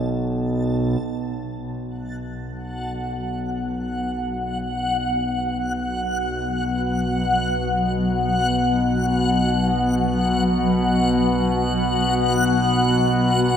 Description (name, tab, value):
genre	dark ambient drone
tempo	free time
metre	none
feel	none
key	unclear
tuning	A4 = 440 Hz
part	analog drone	drone	0.0-13.6 s	B1 to B2	-23 LUFS	equal	chorus
part	backwards swelling texture	texture	2.1-13.6 s	F#5 to A5	-24 LUFS	left 2 dB	built-in reverb
part	granular cloud pad	sustained chords	2.1-13.6 s	F#3 to F#4	-25 LUFS	equal	built-in reverb
room	wet cathedral reverb, RT60 6.7 s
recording	in a vast, echoing space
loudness	-19 LUFS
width	side -8 dB against mid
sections	0.0-1.0 A section; 1.0-13.6 B section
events	fade-in on synth drone 1.0-13.6; fade-in on ambient pad 1.0-13.6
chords	0.0 Asus2/B; 1.0 B5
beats	free time